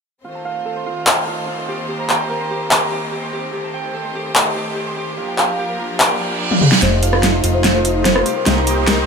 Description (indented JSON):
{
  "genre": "future bass",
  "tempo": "146 BPM",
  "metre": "4/4",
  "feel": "half-time",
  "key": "unclear",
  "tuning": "A4 = 445 Hz",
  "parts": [
    { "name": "bright studio string section", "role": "sustained chords", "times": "0.2-9.1 s", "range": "C3 to C5", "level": "-27 LUFS", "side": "left 1 dB", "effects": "none" },
    { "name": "Celtic harp", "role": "arpeggios", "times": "0.2-9.1 s", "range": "F4 to Bb5", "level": "-24 LUFS", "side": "right 3 dB", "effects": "low-pass filter, ping-pong delay" },
    { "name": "big-room dance drum kit", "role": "drums", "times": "1.1-9.0 s", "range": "handclaps, hi-hat, rim click, snare drum, toms", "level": "-17 LUFS", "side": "equal", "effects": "none" },
    { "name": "reverse cymbal and riser", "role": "sound effects", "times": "6.2-9.1 s", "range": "none", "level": "-24 LUFS", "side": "right 5 dB", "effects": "none" },
    { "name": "kalimba", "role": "melody", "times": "6.8-9.0 s", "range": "G4 to C5", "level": "-22 LUFS", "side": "left 4 dB", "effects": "low-pass filter, ping-pong delay" },
    { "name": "supersaw chords", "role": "riff", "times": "6.8-9.1 s", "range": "A3 to Eb5", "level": "-20 LUFS", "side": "right 1 dB", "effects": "phaser, low-pass filter" },
    { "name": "fat analog bass", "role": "bass", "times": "6.8-9.1 s", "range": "F1 to C2", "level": "-19 LUFS", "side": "equal", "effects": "none" }
  ],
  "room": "moderate shimmer reverb, RT60 4.8 s",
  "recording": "none",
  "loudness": "-15 LUFS",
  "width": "side -5 dB against mid",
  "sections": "0.2-6.8 A section; 6.8-9.1 B section",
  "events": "filter sweep on harp 0.2-6.8; reverse cymbal 6.2-6.8; drum fill 6.5-6.8, 6.8-9.1; build-up 6.8-9.1; filter sweep on supersaw synth 6.8-9.1",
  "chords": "0.2 F7; 1.7 Cm7; 5.2 Gm7; 8.3 Cm7",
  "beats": "| 0.24 0.66 1.07 1.48 | 1.89 2.30 2.71 3.12 | 3.53 3.94 4.35 4.76 | 5.18 5.59 6.00 6.41 | 6.82 7.23 7.64 8.05 | 8.46 8.88"
}